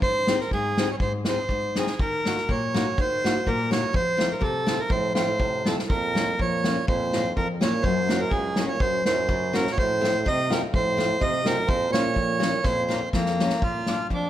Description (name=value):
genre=alpine folk, alpine dance band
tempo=124 BPM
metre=2/4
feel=rubato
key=Bb minor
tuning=A4 = 435 Hz
part: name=accordion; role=melody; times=0.0-14.3 s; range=Bb3 to Eb5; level=-25 LUFS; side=right 1 dB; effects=none
part: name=picked steel-string acoustic guitar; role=accompaniment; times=0.0-14.3 s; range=F2 to Ab4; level=-28 LUFS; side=left 3 dB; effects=none
part: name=unplugged drum kit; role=drums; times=0.0-14.2 s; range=kick drum, snare drum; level=-27 LUFS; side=equal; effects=none
part: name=mellow euphonium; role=second line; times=4.9-13.1 s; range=Db2 to C3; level=-30 LUFS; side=right 4 dB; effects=none
room=moderate recital hall reverb, RT60 1.4 s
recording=none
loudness=-22 LUFS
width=side -12 dB against mid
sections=0.0-13.6 A section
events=drum fill 12.6-13.6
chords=0.0 Ab; 2.0 Ebm; 3.9 F; 5.9 Bbm; 7.8 Gb; 9.8 F; 11.7 Bbmadd9; 13.6 Bb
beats=| 0.02 0.51 | 1.00 1.49 | 1.99 2.49 | 2.98 3.46 | 3.94 4.42 | 4.91 5.40 | 5.90 6.40 | 6.88 7.37 | 7.84 8.31 | 8.80 9.28 | 9.77 10.26 | 10.73 11.21 | 11.68 12.15 | 12.64 13.12 | 13.61 14.10